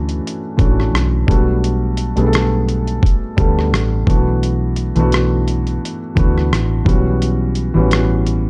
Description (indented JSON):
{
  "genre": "lo-fi hip hop",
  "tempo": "86 BPM",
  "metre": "4/4",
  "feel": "swing 56% on 16ths",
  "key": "unclear",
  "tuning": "A4 = 440 Hz",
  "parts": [
    { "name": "felt-muted upright piano", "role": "accompaniment", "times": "0.0-8.5 s", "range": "E3 to A4", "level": "-21 LUFS", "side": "equal", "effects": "cassette tape" },
    { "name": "vintage muted fingered electric bass", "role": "bass", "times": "0.0-8.5 s", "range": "A1 to D2", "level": "-20 LUFS", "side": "equal", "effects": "none" },
    { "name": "dusty soul sampler-style drum kit", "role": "drums", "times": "0.1-8.4 s", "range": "hi-hat, kick drum, rim click", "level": "-19 LUFS", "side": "equal", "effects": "overdrive, vintage 12-bit sampler grit" }
  ],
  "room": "digital ambience",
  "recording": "dry, gritty hardware recording, transformer saturation",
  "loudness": "-16 LUFS",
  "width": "mono",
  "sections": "0.0-8.5 A section",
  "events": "none",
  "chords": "0.0 Bm11; 1.3 Gmaj7/B; 4.1 E9sus4/B; 6.9 A13/B"
}